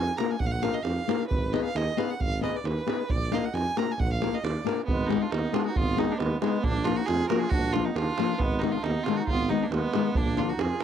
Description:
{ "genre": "balkan folk, Balkan wedding band", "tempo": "135 BPM", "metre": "2/4", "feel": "swing 56% on 16ths", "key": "unclear", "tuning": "A4 = 440 Hz", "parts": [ { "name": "rich violin", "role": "melody", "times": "0.0-10.8 s", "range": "Cb4 to Bb5", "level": "-31 LUFS", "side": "right 4 dB", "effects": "none" }, { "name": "warm tuba", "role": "bass", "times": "0.0-10.7 s", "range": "Ab1 to F2", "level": "-30 LUFS", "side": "equal", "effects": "none" }, { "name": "davul", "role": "percussion", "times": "0.1-10.8 s", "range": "none", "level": "-30 LUFS", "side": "right 3 dB", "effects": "none" }, { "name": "flamenco guitar", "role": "accompaniment", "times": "0.2-10.8 s", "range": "D3 to Cb5", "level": "-27 LUFS", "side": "left 11 dB", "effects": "none" }, { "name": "mellow clarinet", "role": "second line", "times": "4.9-10.8 s", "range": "Ab3 to Gb4", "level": "-33 LUFS", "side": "right 6 dB", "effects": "none" } ], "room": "light reverb", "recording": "dry, close 1970s-style studio recording", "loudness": "-24 LUFS", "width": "side -9 dB against mid", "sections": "0.0-4.9 A section; 4.9-10.8 A section", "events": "speeding up 0.0-10.8", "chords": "0.0 Bb; 1.3 Abm; 3.1 Bb; 4.9 Abm; 6.6 Bb; 8.4 Abm; 10.1 Bb" }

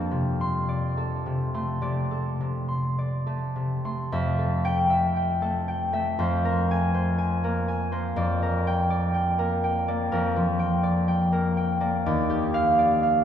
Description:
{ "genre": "classical, solo harp piece", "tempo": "51-62 BPM", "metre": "4/4", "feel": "rubato", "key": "F major", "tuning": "A4 = 440 Hz", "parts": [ { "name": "concert harp", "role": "solo", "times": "0.0-13.2 s", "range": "Eb2 to C6", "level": "-23 LUFS", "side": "equal", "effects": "none" } ], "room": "wet church reverb, RT60 3.5 s", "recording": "minimal, uncompressed stereo recording", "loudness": "-23 LUFS", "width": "side -9 dB against mid", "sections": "0.0-4.1 A section; 4.1-13.2 A section", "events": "none", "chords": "0.0 F6; 4.1 Fmaj9; 6.2 Ab69/F; 8.1 Gm7/F; 12.0 Ebmaj9" }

